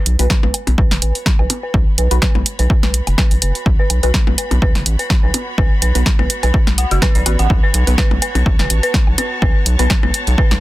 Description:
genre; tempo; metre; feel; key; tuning
minimal techno; 125 BPM; 4/4; swing 55% on 16ths; unclear; A4 = 441 Hz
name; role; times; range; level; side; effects
rich symphonic string section; texture; 0.0-10.6 s; B3 to B5; -29 LUFS; equal; sidechain pumping
round analog bass; bass; 0.1-10.6 s; F#1 to B1; -16 LUFS; equal; sidechain pumping
punchy analog drum machine; drums; 0.1-10.6 s; hi-hat, snare drum; -19 LUFS; equal; overdrive
dark detuned synth bell; riff; 0.2-10.4 s; F#4 to F#5; -24 LUFS; right 1 dB; chorus, tremolo, sidechain pumping, low-pass filter, ping-pong delay
filtered dub chord stab; stabs; 0.2-9.9 s; B3 to B4; -25 LUFS; left 2 dB; phaser, lush chorus, digital delay
electronic kick drum; drums; 0.3-10.5 s; none; -15 LUFS; equal; overdrive
percussion blips and woodblock; percussion; 0.4-10.6 s; none; -26 LUFS; left 4 dB; overdrive, digital delay
room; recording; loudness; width
little or no reverb; dense, heavily limited modern master; -13 LUFS; side -17 dB against mid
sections
0.0-10.6 A section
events
fade-in on string section 0.0-10.6; filter sweep on synth bell 0.0-10.6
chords
0.0 B5

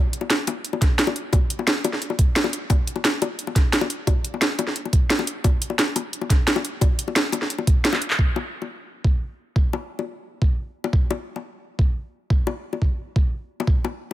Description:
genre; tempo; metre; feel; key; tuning
drum and bass; 175 BPM; 4/4; straight; none; none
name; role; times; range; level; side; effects
drum and bass drum kit; drums; 0.1-8.2 s; handclaps, hi-hat, snare drum; -22 LUFS; right 1 dB; overdrive
bongos; percussion; 0.2-14.1 s; none; -28 LUFS; left 6 dB; none
electronic kick drum; drums; 0.8-13.7 s; none; -19 LUFS; equal; none
room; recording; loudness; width
digital ambience; none; -20 LUFS; side -14 dB against mid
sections
0.0-8.2 A section; 8.2-14.1 B section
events
drum fill 7.9; band accent 8.1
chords
none

